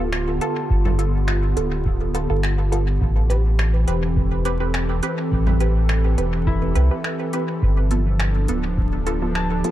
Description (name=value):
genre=ambient dub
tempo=104 BPM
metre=4/4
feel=swing 53% on 16ths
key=A minor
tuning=A4 = 440 Hz
part: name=airy breathy pad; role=sustained chords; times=0.0-9.7 s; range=D3 to B4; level=-26 LUFS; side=equal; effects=chorus
part: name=concert harp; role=arpeggios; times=0.0-2.6, 6.5-9.7 s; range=E4 to A5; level=-34 LUFS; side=left 4 dB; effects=low-pass filter, analog delay
part: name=filtered dub chord stab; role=stabs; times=0.0-9.7 s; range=B3 to B4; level=-28 LUFS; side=right 2 dB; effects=phaser, dub echo
part: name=soft dub sub bass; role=bass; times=0.0-9.6 s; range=D1 to C2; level=-20 LUFS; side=equal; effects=none
part: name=organic electronic drum kit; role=drums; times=0.1-9.7 s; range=congas, finger snaps, hi-hat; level=-30 LUFS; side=equal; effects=dub echo
part: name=electronic kick drum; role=drums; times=0.7-8.9 s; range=none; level=-24 LUFS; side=equal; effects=none
room=digital ambience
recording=echo-heavy mix, vinyl crackle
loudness=-18 LUFS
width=side -13 dB against mid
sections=0.0-9.7 A section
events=filter sweep on harp 0.0-9.7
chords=0.0 G7; 3.0 Am7; 7.6 G7